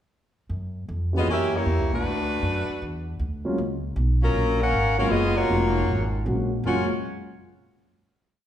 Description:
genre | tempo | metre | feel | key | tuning
jazz, big band swing | 156 BPM | 4/4 | swing 66% on 8ths | F# major | A4 = 439 Hz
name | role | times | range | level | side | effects
upright bass | bass | 0.5-6.9 s | E#1 to F#2 | -26 LUFS | equal | none
dark concert grand piano | accompaniment | 1.1-6.9 s | E3 to G4 | -28 LUFS | equal | none
clear saxophone section | melody | 1.2-6.9 s | F#3 to F#5 | -24 LUFS | left 1 dB | none
room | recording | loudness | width
wet large studio reverb, RT60 1.3 s | heard from further back in the room | -22 LUFS | side -10 dB against mid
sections
0.5-6.6 A section; 6.6-8.2 final chord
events
none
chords
0.5 F#maj7; 1.3 F#7b9; 2.0 Bm7; 2.8 E9; 3.6 F#maj7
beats
| 0.50 0.89 1.27 1.66 | 2.04 2.43 2.81 3.19 | 3.58 3.96 4.34 4.73 | 5.11 5.49 5.88 6.26 | 6.64

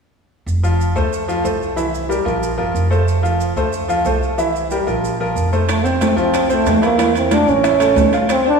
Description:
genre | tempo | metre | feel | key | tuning
latin, salsa | 184 BPM | 4/4 | straight | F major | A4 = 441 Hz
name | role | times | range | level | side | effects
upright bass | bass | 0.5-8.6 s | F1 to E2 | -21 LUFS | right 1 dB | none
maracas | percussion | 0.5-8.5 s | none | -36 LUFS | right 7 dB | none
bright upright piano | accompaniment | 0.6-8.6 s | E3 to F5 | -19 LUFS | equal | none
breathy trombone | melody | 5.7-8.6 s | A3 to D4 | -15 LUFS | right 2 dB | none
bongos | percussion | 5.7-8.5 s | none | -26 LUFS | left 2 dB | none
congas | percussion | 5.7-8.6 s | none | -22 LUFS | equal | none
timbales | percussion | 5.7-8.5 s | none | -24 LUFS | right 4 dB | none
room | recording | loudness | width
wet concert hall reverb, RT60 2.0 s | recorded in a church or concert hall | -14 LUFS | side -5 dB against mid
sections
0.5-5.7 A section; 5.7-8.6 B section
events
none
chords
0.5 F; 1.1 Dm7; 1.8 C7; 2.4 Bb5; 3.1 F; 3.7 Dm7; 4.4 C7; 5.0 Bb5; 5.7 Fmaj7; 7.0 Bbmaj9#11; 7.6 A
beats
| 0.48 0.80 1.13 1.45 | 1.78 2.10 2.43 2.76 | 3.08 3.41 3.73 4.06 | 4.38 4.71 5.04 5.36 | 5.69 6.01 6.34 6.66 | 6.99 7.31 7.64 7.96 | 8.29

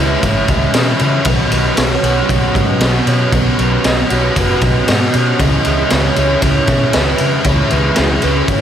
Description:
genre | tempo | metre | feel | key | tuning
rock, shoegaze and dream pop | 116 BPM | 4/4 | straight | B major | A4 = 440 Hz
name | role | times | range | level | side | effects
warm velvety synth lead | melody | 0.0-8.6 s | G#4 to D#5 | -21 LUFS | right 4 dB | chorus, diffuse ambient delay
biting overdriven guitar | riff | 0.0-8.6 s | B2 to F#4 | -16 LUFS | equal | ensemble chorus
vintage muted fingered electric bass | bass | 0.0-8.6 s | F#1 to C#3 | -17 LUFS | equal | none
raw garage drum kit | drums | 0.2-8.6 s | kick drum, ride cymbal, snare drum | -16 LUFS | equal | none
room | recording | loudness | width
moderate lush hall reverb, RT60 2.3 s | dreamy mix soaked in reverb | -11 LUFS | side -9 dB against mid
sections
0.0-8.6 A section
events
none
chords
0.0 C#m7; 1.3 Bsus2; 5.4 C#m7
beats
0.23 0.75 | 1.26 1.78 2.30 2.81 | 3.33 3.85 4.36 4.88 | 5.39 5.91 6.42 6.94 | 7.46 7.97 8.49

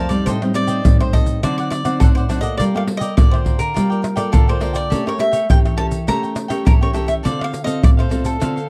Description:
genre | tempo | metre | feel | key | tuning
samba and choro | 103 BPM | 4/4 | straight | unclear | A4 = 440 Hz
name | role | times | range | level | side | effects
cavaquinho | melody | 0.0-8.7 s | A4 to Bb5 | -25 LUFS | equal | none
cavaquinho | accompaniment | 0.0-8.7 s | D4 to A5 | -31 LUFS | equal | none
nylon-string guitar | accompaniment | 0.0-8.7 s | F2 to Bb4 | -24 LUFS | equal | none
tube shaker, pandeiro, surdo and tamborim | percussion | 0.1-8.7 s | none | -18 LUFS | equal | none
room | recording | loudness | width
light reverb | dry, close 1970s-style studio recording | -17 LUFS | mono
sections
0.0-8.7 A section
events
none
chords
0.3 Am7b5; 1.4 D7b9; 2.6 Gm9; 4.9 A7b9; 7.2 Dm7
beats
| 0.27 0.85 1.44 2.02 | 2.60 3.18 3.76 4.34 | 4.92 5.50 6.08 6.67 | 7.25 7.83 8.41

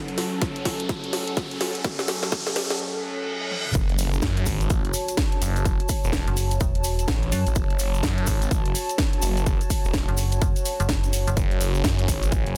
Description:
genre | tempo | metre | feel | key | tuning
bass house | 126 BPM | 4/4 | swing 61% on 16ths | F# minor | A4 = 439 Hz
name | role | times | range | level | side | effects
dark analog pad | sustained chords | 0.0-12.6 s | F#3 to A5 | -34 LUFS | equal | chorus, phaser, sidechain pumping
riser, reverse cymbal and impact | sound effects | 0.0-5.7 s | none | -34 LUFS | equal | none
warbly tape-like pad | texture | 0.0-2.8 s | C#4 to A5 | -41 LUFS | equal | chorus, built-in reverb, sidechain pumping
house drum kit | drums | 0.1-12.5 s | hi-hat, snare drum, toms | -32 LUFS | equal | overdrive
electronic kick drum | drums | 0.4-12.4 s | none | -27 LUFS | equal | overdrive
phased detuned saw bass | bass | 3.8-12.5 s | E1 to F#2 | -27 LUFS | equal | phaser, tube saturation, sidechain pumping
tube shaker | percussion | 3.8-12.4 s | none | -36 LUFS | equal | none
metallic FM bass | bass | 6.3-11.4 s | E1 to F#2 | -26 LUFS | equal | overdrive, sidechain pumping
room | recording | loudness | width
little or no reverb | dense, heavily limited modern master, high-pass filter | -24 LUFS | mono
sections
0.0-3.8 A section; 3.8-12.6 B section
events
build-up 0.0-3.8; drum fill 0.0-2.8, 3.5; riser 0.0-2.8; filter sweep 0.0-3.8; reverse cymbal 2.8-3.8; drop 3.8-12.6; impact 3.8-5.7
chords
0.0 F#m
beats
0.42 0.89 1.37 | 1.84 2.32 2.80 3.27 | 3.75 4.23 4.70 5.18 | 5.66 6.13 6.61 7.08 | 7.56 8.04 8.51 8.99 | 9.46 9.94 10.42 10.89 | 11.37 11.85 12.32

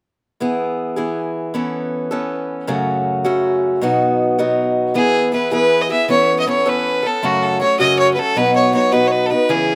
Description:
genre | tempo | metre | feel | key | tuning
celtic folk, Celtic jig | 106 BPM (dotted quarters) | 6/8 | straight | E major | A4 = 440 Hz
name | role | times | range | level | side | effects
picked acoustic archtop guitar | accompaniment | 0.4-9.8 s | F#2 to A4 | -19 LUFS | equal | slapback echo
bright fiddle | melody | 5.0-9.8 s | F#4 to E5 | -18 LUFS | equal | slapback echo
room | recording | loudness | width
light reverb | recorded outdoors, with no room sound | -17 LUFS | mono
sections
0.4-5.0 A section; 5.0-9.8 B section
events
none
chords
0.4 E; 1.5 Aadd9/E; 2.7 F#m; 3.8 B; 5.0 E; 6.1 Aadd9/E; 7.2 F#m; 8.4 B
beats
| 0.41 0.98 | 1.54 2.11 | 2.68 3.25 | 3.82 4.39 | 4.96 5.52 | 6.09 6.66 | 7.23 7.79 | 8.36 8.93 | 9.50

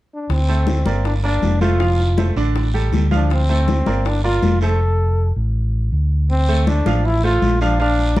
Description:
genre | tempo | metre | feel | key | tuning
latin, salsa | 160 BPM | 4/4 | straight | D minor | A4 = 440 Hz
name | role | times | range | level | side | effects
bright trombone | melody | 0.1-8.2 s | C4 to A4 | -21 LUFS | equal | none
fingered electric bass | bass | 0.3-8.2 s | F1 to D2 | -17 LUFS | equal | none
bongos | percussion | 0.3-4.8 s | none | -28 LUFS | left 5 dB | none
congas | percussion | 0.3-8.2 s | none | -24 LUFS | left 4 dB | none
guiro | percussion | 0.3-8.2 s | none | -34 LUFS | right 1 dB | none
bright baby grand piano | accompaniment | 0.5-8.2 s | D3 to F5 | -24 LUFS | right 4 dB | none
room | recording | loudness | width
light reverb | dark, warm production | -15 LUFS | side -16 dB against mid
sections
0.3-6.3 A section; 6.3-8.2 B section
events
none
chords
0.3 D5; 1.1 Gm7; 1.8 F; 2.6 A7sus4; 3.3 Dm7; 4.1 Gm7; 4.8 F; 5.6 Asus4; 6.3 Dm7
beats
| 0.30 0.68 1.05 1.43 | 1.80 2.18 2.55 2.93 | 3.30 3.68 4.05 4.43 | 4.80 5.18 5.55 5.93 | 6.30 6.68 7.05 7.42 | 7.80 8.17

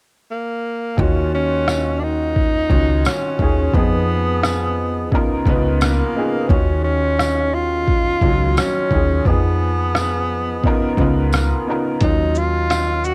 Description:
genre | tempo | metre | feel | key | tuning
lo-fi hip hop | 87 BPM | 4/4 | swing 62% on 16ths | Eb minor | A4 = 440 Hz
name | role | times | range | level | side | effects
warm tenor saxophone | melody | 0.3-13.1 s | Bb3 to Gb4 | -24 LUFS | equal | none
clear upright piano | accompaniment | 1.0-13.1 s | Db3 to Cb5 | -24 LUFS | equal | cassette tape
upright bass | bass | 1.0-13.1 s | Db2 to F2 | -23 LUFS | equal | none
trip hop sampler-style drum kit | drums | 1.0-13.1 s | hi-hat, kick drum, rim click, shaker | -22 LUFS | equal | cassette tape
tambourine | percussion | 1.7-12.9 s | none | -36 LUFS | equal | none
room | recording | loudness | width
light reverb | home recording on cassette | -18 LUFS | mono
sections
1.0-13.1 A section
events
hi-hats muted 1.0-12.0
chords
0.0 N.C.; 1.0 Ebm9; 3.7 Fm7b5; 5.1 Db13; 6.5 Ebm9; 9.3 Fm7b5; 10.6 Db13; 12.0 Ebm9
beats
0.29 | 0.98 1.67 2.36 3.05 | 3.73 4.42 5.12 5.80 | 6.49 7.18 7.87 8.56 | 9.25 9.94 10.63 11.32 | 12.01 12.70

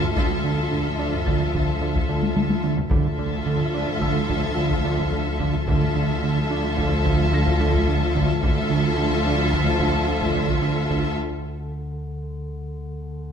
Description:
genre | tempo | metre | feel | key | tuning
cinematic, suspense film score | 109 BPM | 5/4 | straight | D minor | A4 = 439 Hz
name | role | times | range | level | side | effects
rich studio violin section | melody | 0.0-11.1 s | E5 | -31 LUFS | left 3 dB | none
clear studio violin section | second line | 0.0-11.1 s | A4 | -30 LUFS | left 5 dB | none
warm studio viola section | accompaniment | 0.0-11.1 s | F4 | -31 LUFS | left 2 dB | none
fat analog bass | riff | 0.0-11.1 s | D3 to D4 | -26 LUFS | right 3 dB | none
rich studio cello section | bass | 0.0-11.1 s | D2 | -28 LUFS | right 2 dB | none
rich studio double bass section | bass | 0.0-11.1 s | D2 | -29 LUFS | right 1 dB | none
metallic inharmonic drone | drone | 0.1-13.3 s | D2 | -30 LUFS | equal | none
taiko ensemble | drums | 0.0-11.2 s | none | -27 LUFS | left 1 dB | none
felt-muted upright piano | texture | 0.0-13.3 s | A5 to Bb6 | -42 LUFS | left 2 dB | none
warm French horn section | sustained chords | 0.2-11.1 s | F3 to F4 | -30 LUFS | left 1 dB | none
room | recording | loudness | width
wet scoring stage reverb, RT60 1.7 s | minimal, uncompressed stereo recording | -20 LUFS | side -7 dB against mid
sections
0.0-13.3 A section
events
drum fill 2.2-2.9; break 11.2-13.3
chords
0.0 Dmadd9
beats
| 0.16 0.71 1.26 1.81 2.36 | 2.91 3.46 4.01 4.57 5.12 | 5.67 6.22 6.77 7.32 7.87 | 8.42 8.97 9.52 10.07 10.62 | 11.17 11.72 12.27 12.82

